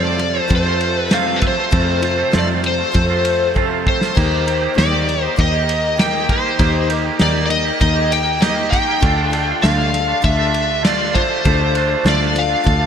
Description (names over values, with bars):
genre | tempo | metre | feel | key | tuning
folk rock and heartland rock | 99 BPM | 4/4 | straight | unclear | A4 = 442 Hz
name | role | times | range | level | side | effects
overdriven slide guitar | melody | 0.0-12.9 s | B4 to G5 | -19 LUFS | left 1 dB | wide subtle chorus, ping-pong delay
mellow reed electric piano | accompaniment | 0.0-12.9 s | D4 to C5 | -29 LUFS | left 9 dB | fast tremolo
picked acoustic archtop guitar | accompaniment | 0.0-12.9 s | F2 to G4 | -26 LUFS | left 6 dB | wide subtle chorus
rich studio string section | sustained chords | 0.0-12.9 s | D4 to C5 | -29 LUFS | left 3 dB | none
twangy electric guitar | riff | 0.0-12.9 s | F2 to G4 | -22 LUFS | right 12 dB | analog chorus
fingered electric bass | bass | 0.0-12.9 s | D2 to F2 | -20 LUFS | equal | none
cloth-damped thuddy drum kit | drums | 0.2-12.8 s | crash cymbal, kick drum, ride cymbal, snare drum | -20 LUFS | equal | gated reverb
room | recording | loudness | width
moderate lush hall reverb, RT60 2.0 s | bright 1980s-style digital production | -14 LUFS | side -8 dB against mid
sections
0.0-12.9 A section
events
drum fill 3.6-4.2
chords
0.0 F; 4.2 Eb; 9.0 Dm